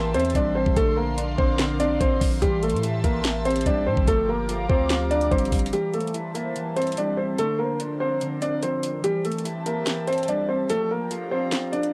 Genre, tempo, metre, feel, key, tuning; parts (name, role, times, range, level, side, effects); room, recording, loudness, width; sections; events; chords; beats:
hip hop, trap; 145 BPM; 4/4; half-time; A phrygian; A4 = 444 Hz
dark grand piano; melody; 0.0-11.9 s; G3 to D5; -27 LUFS; equal; cassette tape
mellow electric guitar; accompaniment; 0.0-11.9 s; D3 to F4; -32 LUFS; equal; cassette tape
airy breathy pad; sustained chords; 0.0-11.9 s; E3 to D6; -37 LUFS; equal; chorus, phaser, cassette tape
long sustained 808-style bass; bass; 0.0-5.7 s; G1 to A2; -30 LUFS; equal
trap drum kit; drums; 0.1-11.9 s; hi-hat, kick drum, snare drum; -28 LUFS; equal; cassette tape
little or no reverb; home recording on cassette; -24 LUFS; mono
0.0-5.7 A section; 5.7-11.9 B section
kick muted 10.7-11.9
0.0 Am7; 0.8 Bbadd9; 2.4 Am7; 4.1 Gm7; 5.7 Am7; 7.4 Bbadd9; 9.0 Am7; 10.7 Gm7
0.35 | 0.76 1.18 1.59 2.00 | 2.42 2.83 3.25 3.66 | 4.07 4.49 4.90 5.32 | 5.73 6.14 6.56 6.97 | 7.38 7.80 8.21 8.63 | 9.04 9.45 9.87 10.28 | 10.70 11.11 11.52